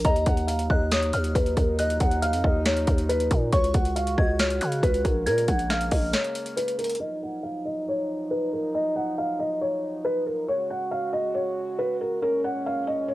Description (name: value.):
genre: hip hop, trap.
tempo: 138 BPM.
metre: 4/4.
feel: half-time.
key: Eb minor.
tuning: A4 = 440 Hz.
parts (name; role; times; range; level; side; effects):
felt-muted upright piano; melody; 0.0-13.1 s; Bb4 to Gb5; -26 LUFS; equal; low-pass filter, cassette tape.
soft synth bell; second line; 0.0-6.5 s; Bb5 to Ab6; -34 LUFS; equal; chorus, cassette tape, analog delay.
mellow French horn section; sustained chords; 0.0-13.1 s; Bb2 to Gb4; -32 LUFS; right 1 dB; low-pass filter, cassette tape.
growling 808-style bass; bass; 0.0-6.1 s; Bb1 to Db3; -26 LUFS; equal; none.
trap drum kit; drums; 0.0-7.0 s; finger snaps, hi-hat, kick drum, snare drum; -25 LUFS; equal; overdrive, cassette tape.
room: light reverb.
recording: home recording on cassette.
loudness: -22 LUFS.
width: side -16 dB against mid.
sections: 0.0-7.0 A section; 7.0-13.1 B section.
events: break 6.1-7.0; filter sweep 7.0-13.1.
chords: 0.0 Ebmadd9; 3.5 Dbsus4; 5.3 Bbm7; 7.0 Ebmadd9; 10.5 Dbsus4; 12.2 Bbm7.